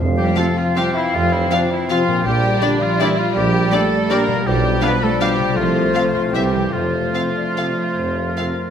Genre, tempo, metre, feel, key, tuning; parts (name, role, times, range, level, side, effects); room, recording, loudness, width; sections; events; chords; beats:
classical; 139-176 BPM; 3/4; rubato; F major; A4 = 438 Hz
mellow clarinet; second line; 0.0-8.7 s; G3 to C4; -28 LUFS; left 1 dB
small flute group; second line; 0.0-8.7 s; Bb4 to F5; -26 LUFS; left 4 dB
mellow bassoon; accompaniment; 0.0-8.7 s; E3 to G3; -25 LUFS; equal
concert harp; arpeggios; 0.0-8.7 s; Bb2 to A4; -27 LUFS; left 8 dB
clear tuba; bass; 0.0-8.3 s; F1 to C2; -27 LUFS; right 4 dB
warm symphonic double bass section; bass; 0.0-8.3 s; Bb1 to F2; -24 LUFS; right 2 dB
timpani; percussion; 0.0-0.5 s; F2; -27 LUFS; equal
clear oboe; second line; 0.2-8.7 s; D4 to B4; -25 LUFS; right 2 dB
warm studio violin section; second line; 0.2-8.7 s; D4 to B4; -25 LUFS; left 2 dB
rich chamber cello section; bass; 0.2-8.7 s; D3 to B3; -25 LUFS; right 3 dB
warm symphonic violin section; melody; 0.4-8.5 s; D5 to F5; -26 LUFS; left 4 dB
dark symphonic viola section; accompaniment; 0.4-8.5 s; C4 to A4; -30 LUFS; equal
bright trombone section; sustained chords; 0.4-8.5 s; Bb2 to G3; -30 LUFS; right 3 dB
mellow French horn section; sustained chords; 0.4-8.5 s; G3 to F4; -30 LUFS; left 3 dB
moderate scoring stage reverb, RT60 1.5 s; -15 LUFS; side -8 dB against mid
0.0-8.7 A section
0.0 F5; 2.2 Gm/Bb; 4.5 G7/B; 5.6 F/C; 6.3 C; 6.7 F
0.36 0.76 | 1.13 1.50 1.89 | 2.25 2.61 3.00 | 3.36 3.72 4.10 | 4.46 4.82 5.20 | 5.57 5.93 6.33 | 6.72 7.13 7.56 | 7.96 8.37